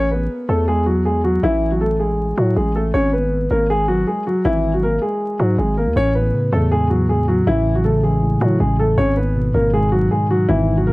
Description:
hip hop, trap; 159 BPM; 4/4; half-time; A4 = 439 Hz
dark concert grand piano; melody; 0.0-10.9 s; E3 to C#5; -18 LUFS; equal; low-pass filter
growling 808-style bass; bass; 0.0-10.9 s; G#1 to A2; -20 LUFS; equal
mellow tine electric piano; accompaniment; 6.0-10.9 s; G#2 to E3; -19 LUFS; equal; low-pass filter
small room ambience; dry, gritty hardware recording, vinyl crackle; -15 LUFS; side -21 dB against mid
0.0-10.9 A section
0.0 A5; 2.9 G#madd9; 6.0 A6; 9.0 G#madd9
0.30 0.68 1.05 | 1.43 1.81 2.19 2.56 | 2.94 3.32 3.70 4.07 | 4.45 4.83 5.21 5.58 | 5.96 6.34 6.72 7.09 | 7.47 7.85 8.22 8.60 | 8.98 9.36 9.73 10.11 | 10.49 10.87

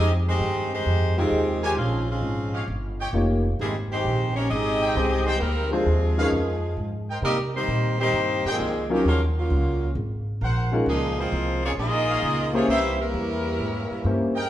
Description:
jazz, big band swing; 132 BPM; 4/4; swing 68% on 8ths; A4 = 441 Hz
edgy saxophone section; melody; 0.0-14.3 s; Eb3 to Eb5; -27 LUFS; left 2 dB
bright trombone section; second line; 0.0-14.3 s; Ab2 to G4; -28 LUFS; right 2 dB
upright bass; bass; 0.0-14.5 s; F1 to C3; -26 LUFS; equal
warm concert grand piano; accompaniment; 1.2-14.3 s; Gb3 to G5; -26 LUFS; left 1 dB
warm trumpet section; stabs; 1.6-14.5 s; Eb4 to Ab5; -31 LUFS; equal
wet large studio reverb, RT60 1.4 s; band playing live in one room; -21 LUFS; side -12 dB against mid
0.0-14.5 A section
0.0 Fm9; 1.8 Bbm9; 2.7 Eb9; 3.6 Abmaj7; 5.4 Dm7b5; 6.3 Fm; 7.2 Cm7; 9.0 Ebm9; 10.0 Ab13; 10.9 Db69; 12.7 C7b9
0.40 0.86 1.31 | 1.77 2.23 2.68 3.14 | 3.59 4.05 4.50 4.96 | 5.41 5.87 6.32 6.78 | 7.23 7.69 8.14 8.59 | 9.05 9.50 9.96 10.41 | 10.87 11.32 11.78 12.23 | 12.68 13.14 13.59 14.05

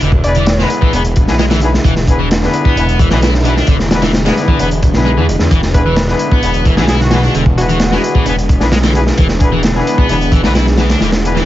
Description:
breakbeat, breaks; 131 BPM; 4/4; straight; A4 = 437 Hz
lush unison pad; sustained chords; 0.0-11.5 s; D3 to G#4; -20 LUFS; equal; chorus, vintage 12-bit sampler grit, sidechain pumping
distorted electric guitar; riff; 0.0-11.4 s; D3 to E4; -19 LUFS; equal; distortion, dub echo
phased detuned saw bass; bass; 0.0-11.5 s; E1 to E2; -15 LUFS; equal; phaser
crunchy breakbeat drum kit; drums; 0.0-11.5 s; hi-hat, kick drum, snare drum; -13 LUFS; equal
downlifter and noise sweep; sound effects; 0.2-1.9, 11.0-11.5 s; barely audible
plucky unison lead; melody; 0.2-0.7, 5.7-8.2 s; F#4 to D5; -21 LUFS; equal; old record sound, dub echo
clear horn section; stabs; 0.2-11.3 s; B3 to B4; -20 LUFS; left 2 dB; vintage 12-bit sampler grit, dub echo
studio ambience; vinyl crackle, nothing above 7.7 kHz; -10 LUFS; side -14 dB against mid
0.0-11.5 A section
0.0 E7
| 0.02 0.48 0.94 1.39 | 1.85 2.31 2.77 3.23 | 3.68 4.14 4.60 5.06 | 5.51 5.97 6.43 6.89 | 7.35 7.80 8.26 8.72 | 9.18 9.64 10.10 10.55 | 11.01

